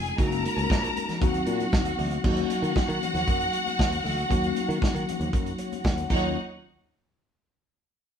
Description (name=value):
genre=disco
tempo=116 BPM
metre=4/4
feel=straight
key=Eb dorian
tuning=A4 = 440 Hz
part: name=bright symphonic string section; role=second line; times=0.0-6.3 s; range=Eb4 to Bb5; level=-29 LUFS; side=equal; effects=slapback echo
part: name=mellow tine electric piano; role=accompaniment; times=0.0-6.4 s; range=Gb3 to Gb5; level=-30 LUFS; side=left 3 dB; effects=medium stereo tremolo
part: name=modern bright fingered electric bass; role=bass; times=0.0-6.3 s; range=F1 to Eb3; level=-31 LUFS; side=right 1 dB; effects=none
part: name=warm soul drum kit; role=drums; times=0.1-6.2 s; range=crash cymbal, hi-hat, kick drum, snare drum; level=-27 LUFS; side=equal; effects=none
part: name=congas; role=percussion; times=0.2-6.3 s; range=none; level=-39 LUFS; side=left 4 dB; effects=none
room=moderate studio reverb, RT60 0.8 s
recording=band playing live in one room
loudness=-23 LUFS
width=side -8 dB against mid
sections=0.0-2.2 A section; 2.2-6.4 B section; 6.4-8.2 C section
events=tine electric piano fill 5.3-6.4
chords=0.2 Gb6; 1.2 Ebm6; 2.2 Ebm7; 6.4 N.C.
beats=| 0.18 0.69 1.21 1.72 | 2.24 2.75 3.27 3.78 | 4.30 4.81 5.33 5.84 | 6.36